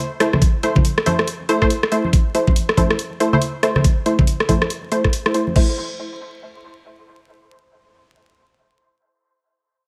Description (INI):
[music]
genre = deep dubstep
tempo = 140 BPM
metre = 4/4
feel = swing 60% on 16ths, half-time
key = A minor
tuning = A4 = 439 Hz
[part]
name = filtered dub chord stab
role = stabs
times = 0.2-8.6 s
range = A3 to C5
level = -23 LUFS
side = equal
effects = chorus, dub echo
[part]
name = dubstep drum kit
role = drums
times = 0.2-5.7 s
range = crash cymbal, hi-hat, rim click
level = -25 LUFS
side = equal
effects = overdrive
[part]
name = congas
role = percussion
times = 0.3-5.5 s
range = none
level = -25 LUFS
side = equal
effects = none
[part]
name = electronic kick drum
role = drums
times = 0.4-5.7 s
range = none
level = -19 LUFS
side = equal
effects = overdrive
[sound]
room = light reverb, digital ambience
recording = vinyl crackle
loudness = -18 LUFS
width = mono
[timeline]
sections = 0.0-5.6 A section; 5.6-9.0 B section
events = none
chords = 0.0 Am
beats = | 0.42 0.84 1.27 1.70 | 2.13 2.56 2.99 3.42 | 3.85 4.27 4.70 5.13 | 5.56 5.99 6.42 6.84 | 7.27 7.70 8.13 8.56